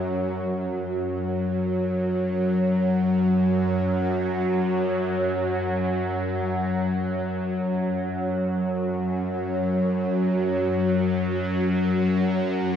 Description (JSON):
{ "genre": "ambient", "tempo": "free time", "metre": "none", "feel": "none", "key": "unclear", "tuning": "A4 = 440 Hz", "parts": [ { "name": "bowed-like drone", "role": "solo", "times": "0.0-12.8 s", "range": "F#2 to F#3", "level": "-22 LUFS", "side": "equal", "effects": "built-in reverb, phaser, diffuse ambient delay" } ], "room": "wet cathedral reverb, RT60 5.2 s", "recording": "worn, warbling old tape, cassette tape, warbly pitch drift", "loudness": "-22 LUFS", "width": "side -8 dB against mid", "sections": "0.4-12.8 A section", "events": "none", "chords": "none", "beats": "free time" }